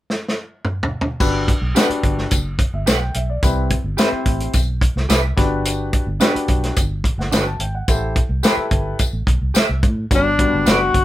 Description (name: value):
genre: uptempo 1960s-style soul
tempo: 108 BPM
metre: 4/4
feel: straight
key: G major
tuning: A4 = 440 Hz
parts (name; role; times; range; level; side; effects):
- warm soul drum kit; drums; 0.1-11.0 s; crash cymbal, hi-hat, kick drum, snare drum, toms; -18 LUFS; equal; none
- warm concert grand piano; accompaniment; 1.2-11.0 s; G3 to A5; -23 LUFS; left 2 dB; none
- vintage muted fingered electric bass; bass; 1.2-11.0 s; F#1 to A2; -22 LUFS; equal; none
- tambourine; percussion; 1.2-10.8 s; none; -28 LUFS; left 5 dB; none
- electric guitar at the edge of break-up; stabs; 1.8-10.8 s; D4 to F#5; -22 LUFS; right 3 dB; harmonic tremolo
- breathy tenor saxophone; melody; 10.1-11.0 s; D4 to F#4; -16 LUFS; left 3 dB; none
room: light reverb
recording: band playing live in one room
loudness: -16 LUFS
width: side -14 dB against mid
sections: 0.0-1.2 A section; 1.2-10.1 B section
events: drum fill 0.1-1.2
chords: 0.0 N.C.; 1.2 Gmaj7; 3.4 Cmaj7; 5.4 Gmaj7; 7.9 Am7; 10.1 Gmaj7